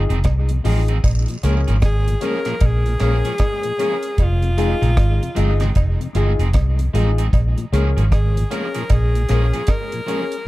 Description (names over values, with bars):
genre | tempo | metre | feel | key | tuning
roots reggae | 76 BPM | 4/4 | swing 61% on 16ths | Bb minor | A4 = 437 Hz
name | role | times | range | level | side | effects
electric guitar at the edge of break-up | accompaniment | 0.0-10.2 s | F3 to Ab4 | -29 LUFS | right 3 dB | tape echo
dark upright piano | stabs | 0.0-10.3 s | Db4 to Bb4 | -27 LUFS | left 5 dB | none
vintage muted fingered electric bass | bass | 0.0-9.5 s | F1 to Db2 | -17 LUFS | equal | none
mellow tonewheel organ | accompaniment | 0.1-10.2 s | F2 to Eb4 | -29 LUFS | left 2 dB | slow rotary speaker, analog delay
deep reggae drum kit | drums | 0.1-10.5 s | hi-hat, kick drum, rim click | -20 LUFS | equal | analog delay
cowbell and jawbone-type rattle | percussion | 0.2-9.9 s | none | -34 LUFS | right 5 dB | none
edgy alto saxophone | melody | 1.9-10.5 s | Eb4 to Bb4 | -25 LUFS | left 1 dB | tape echo
room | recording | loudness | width
little or no reverb | echo-heavy mix | -16 LUFS | side -18 dB against mid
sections
0.0-10.5 A section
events
none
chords
0.0 Fm7; 1.0 Bbm7; 4.2 Fm7; 7.3 Bbm7